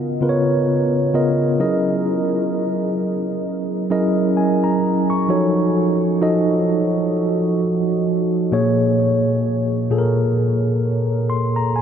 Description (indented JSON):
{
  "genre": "R&B",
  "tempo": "65 BPM",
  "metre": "4/4",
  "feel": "swing 58% on 16ths",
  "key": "unclear",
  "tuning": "A4 = 441 Hz",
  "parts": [
    { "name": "mellow tine electric piano", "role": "solo", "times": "0.0-11.8 s", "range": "Bb2 to Db6", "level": "-16 LUFS", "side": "equal", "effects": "medium stereo tremolo, tape echo" }
  ],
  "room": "wet huge ambient reverb, RT60 7.8 s",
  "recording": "dreamy mix soaked in reverb",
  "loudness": "-16 LUFS",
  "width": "side -8 dB against mid",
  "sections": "0.0-5.3 A section; 5.3-11.8 B section",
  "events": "none",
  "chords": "0.0 Db13; 1.6 Gb13; 5.3 F7b9b13; 8.5 Bbm7",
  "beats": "0.68 | 1.60 2.52 3.44 4.37 | 5.29 6.21 7.14 8.06 | 8.98 9.91 10.83 11.75"
}